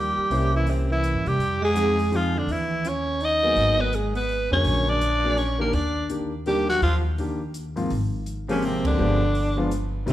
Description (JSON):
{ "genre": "jazz, small-group swing and bop", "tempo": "166 BPM", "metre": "3/4", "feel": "swing 62% on 8ths", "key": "Eb major", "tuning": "A4 = 440 Hz", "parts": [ { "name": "growling alto saxophone", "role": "melody", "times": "0.0-10.1 s", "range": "C4 to Eb5", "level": "-24 LUFS", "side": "equal", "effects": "none" }, { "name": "mellow tenor saxophone", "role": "second line", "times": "0.0-10.1 s", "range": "C3 to Eb4", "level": "-29 LUFS", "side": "right 3 dB", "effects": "none" }, { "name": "warm concert grand piano", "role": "accompaniment", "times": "0.0-10.1 s", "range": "Ab2 to D5", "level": "-28 LUFS", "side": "left 1 dB", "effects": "none" }, { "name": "upright bass", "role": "bass", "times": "0.0-10.1 s", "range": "G1 to C3", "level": "-26 LUFS", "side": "equal", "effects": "none" }, { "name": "compact cocktail drum kit", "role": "drums", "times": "0.3-10.1 s", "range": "hi-hat, kick drum, ride cymbal, snare drum", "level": "-36 LUFS", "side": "equal", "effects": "none" } ], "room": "moderate recital hall reverb, RT60 1.4 s", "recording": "recorded in a church or concert hall", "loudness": "-21 LUFS", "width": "side -13 dB against mid", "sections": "0.0-7.9 A section; 7.9-10.1 B section", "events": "band accent 8.8", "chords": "0.3 C7b9; 1.4 Fm7; 2.5 Eb5; 3.6 Abm9; 4.6 Bbaug7; 5.7 Ebmaj7; 7.9 Abmaj13; 9.0 G7b9" }